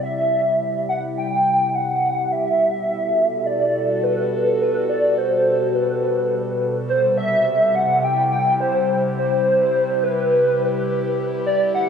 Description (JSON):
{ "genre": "IDM", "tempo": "105 BPM", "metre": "4/4", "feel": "swing 56% on 16ths", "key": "C lydian", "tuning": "A4 = 440 Hz", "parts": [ { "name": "warbly nostalgic lead", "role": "melody", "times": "0.0-11.9 s", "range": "B4 to G5", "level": "-18 LUFS", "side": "equal", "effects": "ensemble chorus, tape echo" }, { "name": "warbly tape-like pad", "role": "sustained chords", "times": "0.0-11.9 s", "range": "B2 to A4", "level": "-24 LUFS", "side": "equal", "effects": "chorus, built-in reverb, phaser" } ], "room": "wet plate reverb, RT60 2.6 s", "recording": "echo-heavy mix, nothing above 10.9 kHz", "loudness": "-17 LUFS", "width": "side -7 dB against mid", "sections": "0.0-6.9 A section; 6.9-11.9 B section", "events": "filter sweep on ambient pad 0.0-6.9", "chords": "0.0 C; 2.3 Gmaj7/B; 6.9 Cmaj7" }